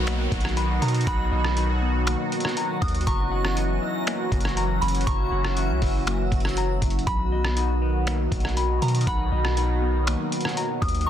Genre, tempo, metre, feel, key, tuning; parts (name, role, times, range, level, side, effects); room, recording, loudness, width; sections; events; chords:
hip hop, atmospheric cloud-rap; 120 BPM; 4/4; half-time; B major; A4 = 436 Hz
sweeping resonant pad; sustained chords; 0.0-11.1 s; B2 to F#4; -28 LUFS; right 1 dB; chorus, sidechain pumping
semi-hollow electric guitar; arpeggios; 0.0-11.1 s; A#3 to B5; -33 LUFS; left 8 dB; ping-pong delay
long sustained 808-style bass; bass; 0.0-11.1 s; F#1 to B2; -25 LUFS; equal
downlifter; sound effects; 0.0-3.1 s; -38 LUFS; equal
backwards swelling texture; texture; 0.0-9.1 s; B3 to A#6; -37 LUFS; equal; built-in reverb
trip hop sampler-style drum kit; drums; 0.1-11.1 s; finger snaps, hi-hat, kick drum, rim click; -28 LUFS; equal; soft clipping on snare
soft synth bell; melody; 0.8-11.1 s; A#5 to D#6; -32 LUFS; equal; chorus, phaser, ping-pong delay
little or no reverb; dense, heavily limited modern master; -21 LUFS; side -10 dB against mid
0.0-11.1 A section
0.0 Bmaj7; 3.1 F#7; 7.1 Bmaj7